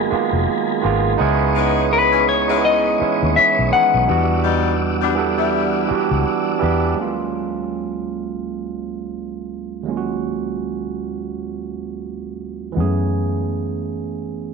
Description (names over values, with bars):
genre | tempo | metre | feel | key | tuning
R&B | 83 BPM | 4/4 | swing 58% on 16ths | unclear | A4 = 440 Hz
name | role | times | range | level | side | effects
barky tine electric piano | accompaniment | 0.0-14.5 s | Eb2 to A4 | -21 LUFS | right 8 dB | overdrive
tonewheel organ | sustained chords | 0.0-6.9 s | G3 to E6 | -26 LUFS | left 2 dB | slow rotary speaker, chorus vibrato
vintage muted fingered electric bass | bass | 0.0-6.9, 12.8-14.5 s | F1 to Gb2 | -22 LUFS | left 3 dB | none
warm horn section | stabs | 1.5-5.9 s | Fb3 to E4 | -23 LUFS | left 13 dB | none
clean electric guitar | melody | 1.9-6.6 s | Cb5 to Gb5 | -16 LUFS | left 6 dB | slapback echo
room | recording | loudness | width
moderate echo chamber reverb, RT60 2.3 s | 1960s-style stereo with parts hard left and right | -17 LUFS | side -4 dB against mid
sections
0.0-7.0 A section; 7.0-14.5 B section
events
none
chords
0.0 Abm9; 1.2 Dbm9; 4.1 Em9; 7.0 Ebm11; 12.7 Gbm11